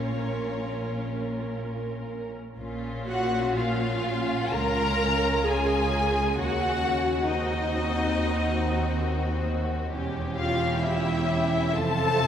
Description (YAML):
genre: classical, slow romantic movement for string orchestra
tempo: 57-69 BPM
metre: 4/4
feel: rubato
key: Bb minor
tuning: A4 = 440 Hz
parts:
  - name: rich studio violin section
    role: melody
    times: 0.0-12.3 s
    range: Db5 to Bb5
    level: -30 LUFS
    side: left 4 dB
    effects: none
  - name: warm symphonic violin section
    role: second line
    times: 0.0-12.3 s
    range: C4 to G4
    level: -32 LUFS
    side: left 2 dB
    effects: none
  - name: rich studio viola section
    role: accompaniment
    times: 0.0-12.3 s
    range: Db4 to Bb4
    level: -30 LUFS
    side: right 1 dB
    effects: none
  - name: rich studio cello section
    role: bass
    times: 0.0-12.3 s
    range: Db2 to Bb2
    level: -32 LUFS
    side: right 2 dB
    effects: none
  - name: rich studio double bass section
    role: bass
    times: 0.0-12.3 s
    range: E1 to Eb2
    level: -32 LUFS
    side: right 2 dB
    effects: none
room: wet cathedral reverb, RT60 5.0 s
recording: recorded in a church or concert hall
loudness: -24 LUFS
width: side -9 dB against mid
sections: 0.0-2.6 A section; 2.6-12.3 A section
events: none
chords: 0.0 Bbm; 4.5 Bbm/Db; 6.4 Cdim/Eb; 9.9 Em6; 11.8 F